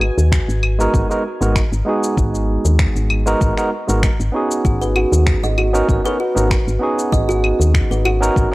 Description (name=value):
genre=organic downtempo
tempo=97 BPM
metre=4/4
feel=swing 54% on 16ths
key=G# minor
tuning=A4 = 440 Hz
part: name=woody FM bass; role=bass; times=0.0-8.5 s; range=G#1 to D#2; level=-17 LUFS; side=equal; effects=sidechain pumping
part: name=electronic claves, cabasa and finger snaps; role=drums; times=0.0-8.5 s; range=none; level=-24 LUFS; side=left 2 dB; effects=none
part: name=electronic kick drum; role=drums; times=0.3-8.5 s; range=none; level=-19 LUFS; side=equal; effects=none
part: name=barky tine electric piano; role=accompaniment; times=0.8-8.5 s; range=G#3 to A#4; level=-20 LUFS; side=right 2 dB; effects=overdrive, sidechain pumping, tape echo
part: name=kalimba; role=arpeggios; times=4.6-8.5 s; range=F#4 to D#5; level=-22 LUFS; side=equal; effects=tape echo
room=digital ambience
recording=dry, gritty hardware recording, cassette tape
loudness=-14 LUFS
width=side -20 dB against mid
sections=0.0-8.5 A section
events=none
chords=0.0 G#m7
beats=0.32 0.94 1.56 | 2.18 2.79 3.41 4.03 | 4.65 5.27 5.89 6.51 | 7.12 7.74 8.36